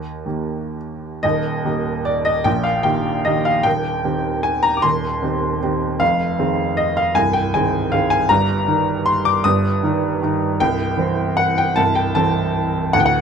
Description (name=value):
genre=classical, piano waltz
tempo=119-165 BPM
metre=3/4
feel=rubato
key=Eb major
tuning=A4 = 438 Hz
part: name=clear upright piano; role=solo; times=0.0-13.2 s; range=C1 to Eb6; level=-16 LUFS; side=equal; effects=none
room=little or no reverb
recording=close, detailed microphones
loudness=-16 LUFS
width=side -6 dB against mid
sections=0.0-1.2 A section; 1.2-13.2 B section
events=none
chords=0.0 Eb; 3.7 Cm/Eb; 6.0 Fm7; 8.3 Eb/G; 10.6 C; 11.8 Am/C